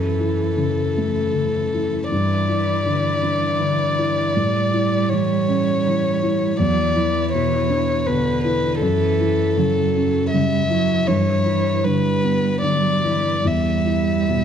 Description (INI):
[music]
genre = neoclassical piano and strings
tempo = 80 BPM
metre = 3/4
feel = rubato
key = E dorian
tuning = A4 = 438 Hz
[part]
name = dark violin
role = melody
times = 0.0-14.4 s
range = A4 to E5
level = -22 LUFS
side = left 2 dB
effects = slapback echo
[part]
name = warm cello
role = second line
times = 0.0-14.4 s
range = D3 to G3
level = -24 LUFS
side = right 10 dB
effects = none
[part]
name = felt-muted upright piano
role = accompaniment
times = 0.0-14.4 s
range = E2 to E4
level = -21 LUFS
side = left 2 dB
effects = none
[sound]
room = moderate recital hall reverb, RT60 1.5 s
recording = dark, warm production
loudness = -17 LUFS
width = side -8 dB against mid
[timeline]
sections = 0.0-14.4 A section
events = none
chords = 0.0 F#m7; 2.1 Em7/G; 4.3 A7; 6.6 E5; 8.8 F#m7; 11.1 Em7/G; 13.5 Em